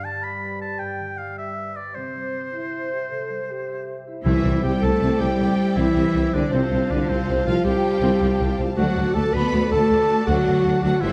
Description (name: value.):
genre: cinematic, heroic adventure film score.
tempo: 106 BPM (dotted quarters).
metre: 12/8.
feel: straight.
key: C major.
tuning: A4 = 440 Hz.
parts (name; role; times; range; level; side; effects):
clear oboe; second line; 0.0-11.1 s; C4 to B5; -33 LUFS; equal; none.
mellow large flute ensemble; second line; 0.0-11.1 s; C5 to B5; -36 LUFS; equal; none.
mellow French horn section; sustained chords; 0.0-11.1 s; G3 to B4; -27 LUFS; equal; none.
concert harp; arpeggios; 0.0-11.1 s; G2 to E5; -34 LUFS; equal; none.
warm symphonic violin section; melody; 4.3-11.1 s; C5 to B5; -36 LUFS; equal; none.
warm symphonic violin section; second line; 4.3-11.1 s; C5 to C6; -38 LUFS; equal; none.
warm studio viola section; accompaniment; 4.3-11.1 s; G3 to G4; -31 LUFS; equal; none.
rich chamber double bass section; bass; 4.3-11.1 s; G1 to D2; -28 LUFS; equal; none.
rich symphonic cello section; bass; 4.3-11.1 s; C3 to B3; -27 LUFS; equal; none.
warm tuba; bass; 4.3-11.1 s; G1 to D2; -30 LUFS; equal; none.
timpani; percussion; 4.3-4.8 s; C3; -30 LUFS; equal; none.
room: wet scoring stage reverb, RT60 1.9 s.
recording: dark, warm production.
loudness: -22 LUFS.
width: mono.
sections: 0.0-4.3 A section; 4.3-11.1 A section.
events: none.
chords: 0.0 G; 2.0 C; 4.3 Cadd9; 6.5 Fadd9/C; 8.8 D.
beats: 0.24 0.80 1.38 | 1.95 2.53 3.11 3.69 | 4.26 4.83 5.40 5.96 | 6.53 7.09 7.66 8.22 | 8.78 9.34 9.91 10.47 | 11.03.